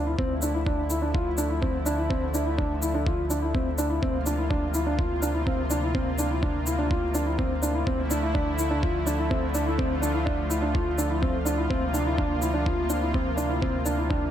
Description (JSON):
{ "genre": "piano and strings electronica", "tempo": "125 BPM", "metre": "4/4", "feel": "straight", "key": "D minor", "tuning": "A4 = 440 Hz", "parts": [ { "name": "lush unison pad", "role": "sustained chords", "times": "0.0-14.3 s", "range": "C3 to F4", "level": "-31 LUFS", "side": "equal", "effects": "chorus, sidechain pumping" }, { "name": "warm sub bass", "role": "bass", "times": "0.0-14.3 s", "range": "D2", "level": "-30 LUFS", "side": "equal", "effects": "tube saturation, sidechain pumping" }, { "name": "felt-muted upright piano", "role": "riff", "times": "0.1-14.2 s", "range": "C4 to F4", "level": "-27 LUFS", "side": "equal", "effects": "ping-pong delay" }, { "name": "electronic kick drum", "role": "drums", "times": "0.2-14.2 s", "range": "none", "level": "-28 LUFS", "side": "equal", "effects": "overdrive" }, { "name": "shaker", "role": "drums", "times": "0.4-14.0 s", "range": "none", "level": "-36 LUFS", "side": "left 1 dB", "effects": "none" } ], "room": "light reverb, digital ambience", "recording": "none", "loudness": "-24 LUFS", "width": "side -10 dB against mid", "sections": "0.0-14.3 A section", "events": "none", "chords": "0.2 Dmadd9; 4.0 Bbsus2/D; 7.9 Dmadd9; 11.7 Bbsus2/D", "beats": "| 0.18 0.67 1.15 1.62 | 2.10 2.58 3.06 3.54 | 4.03 4.50 4.99 5.46 | 5.95 6.42 6.91 7.38 | 7.87 8.35 8.82 9.30 | 9.79 10.27 10.74 11.22 | 11.71 12.19 12.66 13.14 | 13.62 14.11" }